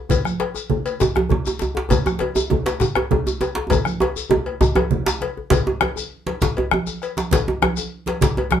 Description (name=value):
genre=west african traditional, West African drum ensemble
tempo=133 BPM (dotted quarters)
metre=12/8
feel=straight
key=none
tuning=none
part: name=bombo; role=percussion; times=0.1-8.6 s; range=none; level=-22 LUFS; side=left 3 dB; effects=none
part: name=congas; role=percussion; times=0.1-8.6 s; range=none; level=-25 LUFS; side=right 4 dB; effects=none
part: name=cowbell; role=percussion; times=0.1-8.5 s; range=none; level=-27 LUFS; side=left 8 dB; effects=none
part: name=djembe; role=percussion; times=0.1-8.6 s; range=none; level=-28 LUFS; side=left 5 dB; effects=none
part: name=shekere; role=percussion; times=0.1-8.4 s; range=none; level=-30 LUFS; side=left 7 dB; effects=none
part: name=djembe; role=percussion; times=1.0-8.6 s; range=none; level=-21 LUFS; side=right 2 dB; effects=none
room=moderate studio ambience, RT60 0.5 s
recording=band playing live in one room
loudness=-18 LUFS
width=side -9 dB against mid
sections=0.0-5.5 A section; 5.5-8.6 B section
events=drum fill 3.7-5.5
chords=none